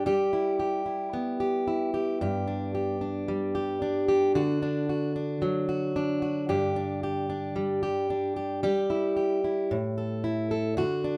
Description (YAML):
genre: pop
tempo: 112 BPM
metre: 4/4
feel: straight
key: unclear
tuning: A4 = 439 Hz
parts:
  - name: fingerpicked plugged-in steel-string acoustic guitar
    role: solo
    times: 0.0-11.2 s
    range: G2 to A4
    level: -28 LUFS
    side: equal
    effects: none
room: moderate studio reverb, RT60 0.8 s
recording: none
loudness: -28 LUFS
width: mono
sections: 0.0-10.8 A section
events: none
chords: 0.1 Em/G; 2.2 G5; 4.4 D; 6.5 G5; 8.6 Em/G; 9.7 A5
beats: | 0.06 0.60 1.14 1.67 | 2.21 2.74 3.28 3.82 | 4.35 4.89 5.42 5.96 | 6.49 7.03 7.56 8.10 | 8.63 9.17 9.70 10.24 | 10.77